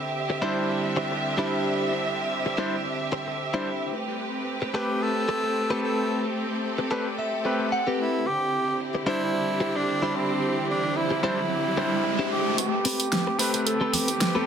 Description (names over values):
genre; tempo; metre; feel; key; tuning
nu-disco, nu disco; 111 BPM; 4/4; swing 54% on 16ths; A minor; A4 = 439 Hz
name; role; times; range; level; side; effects
rich studio string section; sustained chords; 0.0-14.5 s; D3 to E5; -30 LUFS; right 1 dB; low-pass filter
pop drum kit; drums; 0.0-14.3 s; hi-hat, snare drum, tambourine; -26 LUFS; right 1 dB; overdrive, low-pass filter on hats, low-pass filter on perc, low-pass filter on snare, low-pass filter on room
direct-recorded clean electric guitar; riff; 0.3-14.5 s; C4 to F#5; -30 LUFS; left 2 dB; lush chorus, low-pass filter, tape echo
clear electric grand piano; accompaniment; 0.4-14.5 s; G3 to B5; -30 LUFS; equal; tape echo
warm tenor saxophone; melody; 4.8-14.5 s; C4 to B4; -28 LUFS; right 1 dB; low-pass filter, ping-pong delay
riser; sound effects; 9.8-14.5 s; none; -33 LUFS; right 1 dB; none
congas; percussion; 13.9-14.5 s; none; -34 LUFS; right 3 dB; none
room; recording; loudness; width
moderate plate reverb, RT60 1.5 s, digital ambience; dense, heavily limited modern master; -23 LUFS; side -8 dB against mid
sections
0.0-12.6 A section; 12.6-14.5 B section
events
clean electric guitar fill 6.6-8.3; riser 9.8-12.6, 12.6-14.5; build-up 12.6-14.5; filter sweep on clean electric guitar 12.6-14.5; filter sweep on string section 12.6-14.5; filter sweep on tenor saxophone 12.6-14.5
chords
0.0 D9sus4; 3.9 Am9; 8.3 D9sus4; 12.6 Am9